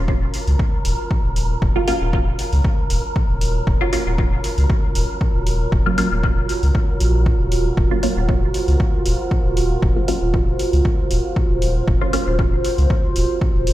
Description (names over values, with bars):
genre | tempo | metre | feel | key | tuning
dub techno | 117 BPM | 4/4 | swing 54% on 16ths | Eb dorian | A4 = 441 Hz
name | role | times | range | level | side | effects
dark analog pad | sustained chords | 0.3-13.7 s | F4 to Db5 | -25 LUFS | right 2 dB | chorus, phaser, sidechain pumping
filtered dub chord stab | stabs | 0.0-12.3 s | Gb3 to F4 | -24 LUFS | right 1 dB | phaser, sidechain pumping, dub echo
warm sub bass | bass | 0.0-13.7 s | Eb1 to Db2 | -19 LUFS | equal | sidechain pumping
wind-like tuned noise texture | texture | 0.0-13.7 s | Bb4 | -31 LUFS | equal | built-in reverb, sidechain pumping
electronic kick drum | drums | 0.1-13.5 s | none | -19 LUFS | equal | overdrive
electronic hi-hat | drums | 0.3-13.7 s | none | -32 LUFS | equal | none
room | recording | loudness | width
little or no reverb | played on a big sound system in a bare room, large studio reverb | -16 LUFS | side -15 dB against mid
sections
0.0-13.7 A section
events
filter sweep on synth stab 0.0-13.7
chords
0.0 Ebm9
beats
0.08 0.59 1.11 | 1.62 2.13 2.65 3.16 | 3.67 4.18 4.70 5.21 | 5.72 6.24 6.75 7.26 | 7.77 8.29 8.80 9.31 | 9.82 10.34 10.85 11.36 | 11.88 12.39 12.90 13.41